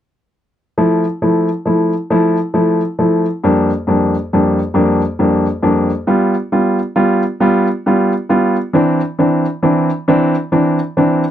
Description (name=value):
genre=pop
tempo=45 BPM (dotted quarters)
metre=6/8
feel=straight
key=F major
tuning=A4 = 438 Hz
part: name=clear baby grand piano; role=accompaniment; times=0.8-11.2 s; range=F2 to F4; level=-12 LUFS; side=equal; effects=none
room=light reverb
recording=dry, close 1970s-style studio recording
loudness=-12 LUFS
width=side -10 dB against mid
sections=0.8-11.3 A section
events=none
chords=0.8 Fmaj7; 3.4 Bb6/F; 6.1 G7; 8.7 Cadd9